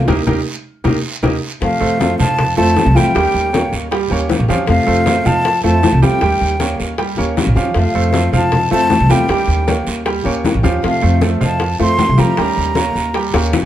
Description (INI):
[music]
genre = latin, Cuban son and guajira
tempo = 156 BPM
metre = 4/4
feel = straight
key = F major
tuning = A4 = 440 Hz
[part]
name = flamenco guitar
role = accompaniment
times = 0.0-13.7 s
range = C3 to G4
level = -21 LUFS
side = left 4 dB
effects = none
[part]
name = bright baby grand piano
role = arpeggios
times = 0.0-13.7 s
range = F3 to G5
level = -20 LUFS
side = right 5 dB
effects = none
[part]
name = upright bass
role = bass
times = 0.0-13.7 s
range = Bb1 to F3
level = -18 LUFS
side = equal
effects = none
[part]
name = bongos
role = percussion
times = 0.1-13.6 s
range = none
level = -22 LUFS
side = left 5 dB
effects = none
[part]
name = congas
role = percussion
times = 0.1-13.7 s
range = none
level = -21 LUFS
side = left 2 dB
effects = none
[part]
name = guiro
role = percussion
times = 0.1-13.7 s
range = none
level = -29 LUFS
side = right 4 dB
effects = none
[part]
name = breathy concert flute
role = melody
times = 1.6-13.5 s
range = F5 to C6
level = -18 LUFS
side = equal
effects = none
[sound]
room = moderate studio reverb, RT60 0.5 s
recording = dark, warm production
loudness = -12 LUFS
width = side -12 dB against mid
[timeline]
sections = 0.0-1.6 A section; 1.6-13.7 B section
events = band accent 0.1-1.6; drum fill 0.5-1.6, 13.3-13.7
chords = 0.1 Eb7; 1.6 F; 3.2 Eb7; 4.7 F; 6.2 Eb7; 7.8 F; 9.3 Eb7; 10.8 F; 12.4 Eb7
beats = | 0.08 0.46 0.85 1.23 | 1.62 2.00 2.38 2.77 | 3.15 3.54 3.92 4.31 | 4.69 5.07 5.46 5.84 | 6.23 6.61 7.00 7.38 | 7.76 8.15 8.53 8.92 | 9.30 9.69 10.07 10.45 | 10.84 11.22 11.61 11.99 | 12.38 12.76 13.15 13.53